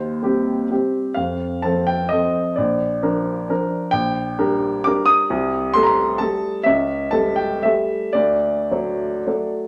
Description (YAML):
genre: classical, romantic triple-time dance for piano with dotted rhythms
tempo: 103-142 BPM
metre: 3/4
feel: rubato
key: Bb major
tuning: A4 = 440 Hz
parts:
  - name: warm grand piano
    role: solo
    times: 0.0-9.7 s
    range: Bb1 to Eb6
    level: -20 LUFS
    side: equal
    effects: none
room: wet large studio reverb, RT60 0.9 s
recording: none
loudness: -20 LUFS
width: mono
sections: 0.0-9.7 A section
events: none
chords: 0.0 Cm/Eb; 1.2 F; 2.6 Bb; 3.9 Gm/Bb; 5.3 Am7b5/C; 6.7 A7/C#; 8.2 D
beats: 0.23 0.70 | 1.17 1.64 2.12 | 2.57 3.03 3.50 | 3.94 4.38 4.85 | 5.29 5.74 6.20 | 6.65 7.13 7.64 | 8.15 8.71 9.26